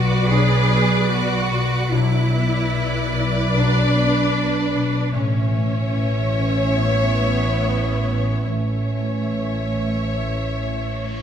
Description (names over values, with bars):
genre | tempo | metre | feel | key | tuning
cinematic, suspense film score | 69-75 BPM | 4/4 | straight | unclear | A4 = 440 Hz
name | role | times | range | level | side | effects
warm symphonic violin section | melody | 0.0-11.2 s | D5 to E5 | -32 LUFS | left 2 dB | none
warm symphonic violin section | second line | 0.0-11.2 s | C#5 to D5 | -28 LUFS | left 3 dB | none
rich symphonic viola section | accompaniment | 0.0-11.2 s | B4 to C#5 | -28 LUFS | right 2 dB | none
buzzing marimba with soft mallets | riff | 0.0-11.2 s | A2 to B3 | -23 LUFS | left 3 dB | none
clear symphonic cello section | bass | 0.0-11.2 s | A3 to G#4 | -25 LUFS | right 2 dB | none
rich symphonic double bass section | bass | 0.0-11.2 s | A1 to B1 | -23 LUFS | right 2 dB | none
bright symphonic violin section | texture | 0.0-4.7 s | D6 to F#6 | -32 LUFS | left 2 dB | none
small celesta | texture | 0.0-11.2 s | B4 to D7 | -37 LUFS | left 4 dB | none
mellow French horn section | sustained chords | 0.3-11.2 s | E3 to D4 | -28 LUFS | left 1 dB | none
reverse cymbal | sound effects | 10.9-11.2 s | none | -46 LUFS | right 1 dB | none
room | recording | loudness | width
wet scoring stage reverb, RT60 1.8 s | minimal, uncompressed stereo recording | -18 LUFS | side -9 dB against mid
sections
0.0-11.2 A section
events
none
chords
0.0 Bm; 5.2 A